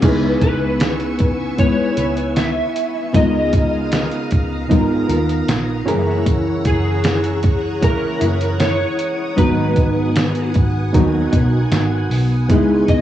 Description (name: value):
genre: indie pop, bedroom pop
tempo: 77 BPM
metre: 4/4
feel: straight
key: C# dorian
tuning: A4 = 439 Hz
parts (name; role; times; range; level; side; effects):
- nylon-string guitar; accompaniment; 0.0-13.0 s; F#2 to B4; -22 LUFS; left 4 dB; ensemble chorus, vibrato effect, cassette tape
- reed electric piano; accompaniment; 0.0-13.0 s; B3 to A#5; -21 LUFS; right 3 dB; overdrive, cassette tape
- string machine, violins; sustained chords; 0.0-13.0 s; B3 to E6; -29 LUFS; equal; ensemble chorus, cassette tape
- vintage muted picked electric bass; bass; 0.0-13.0 s; F#1 to D#2; -22 LUFS; right 1 dB; none
- lo-fi sampler-style drum kit; drums; 0.0-13.0 s; crash cymbal, hi-hat, kick drum, snare drum; -18 LUFS; equal; cassette tape
- electric slide guitar; melody; 0.4-13.0 s; G#4 to E5; -23 LUFS; equal; ensemble chorus, cassette tape, tape echo
room: light reverb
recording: home recording on cassette, studio ambience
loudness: -15 LUFS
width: side -12 dB against mid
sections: 0.0-13.0 A section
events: none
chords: 0.0 C#m7; 3.1 C#13; 5.9 F#7; 9.4 G#m7; 12.5 C#m7